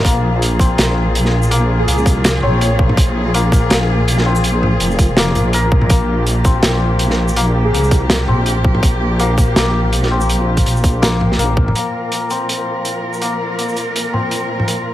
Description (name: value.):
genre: half-time drum and bass.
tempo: 164 BPM.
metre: 4/4.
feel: swing 55% on 16ths, half-time.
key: unclear.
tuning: A4 = 441 Hz.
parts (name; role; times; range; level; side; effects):
rich studio cello section; sustained chords; 0.0-14.9 s; Bb2 to Bb4; -22 LUFS; equal; sidechain pumping.
santur; arpeggios; 0.0-14.9 s; Bb3 to Bb4; -21 LUFS; left 4 dB; low-pass filter, digital delay.
deep soft wobble bass; bass; 0.0-11.7 s; F1 to C2; -16 LUFS; equal; chorus.
electronic kick drum; drums; 0.0-11.7 s; none; -13 LUFS; equal; none.
crunchy breakbeat drum kit; drums; 0.1-14.8 s; hi-hat, shaker, snare drum, toms; -18 LUFS; equal; none.
airy dreamy lead; melody; 1.8-2.8, 7.6-7.9 s; Ab4 to Db5; -23 LUFS; right 1 dB; chorus, digital delay.
room: light reverb, small room ambience.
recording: none.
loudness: -13 LUFS.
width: side -13 dB against mid.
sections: 0.0-11.8 A section; 11.8-14.9 B section.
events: drop 0.0-11.8.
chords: 0.0 Bb5.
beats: | 0.05 0.41 0.78 1.15 | 1.51 1.88 2.24 2.61 | 2.97 3.34 3.71 4.07 | 4.44 4.80 5.17 5.54 | 5.90 6.27 6.63 7.00 | 7.36 7.73 8.10 8.46 | 8.83 9.19 9.56 9.93 | 10.29 10.66 11.02 11.39 | 11.75 12.12 12.49 12.85 | 13.22 13.58 13.95 14.31 | 14.68.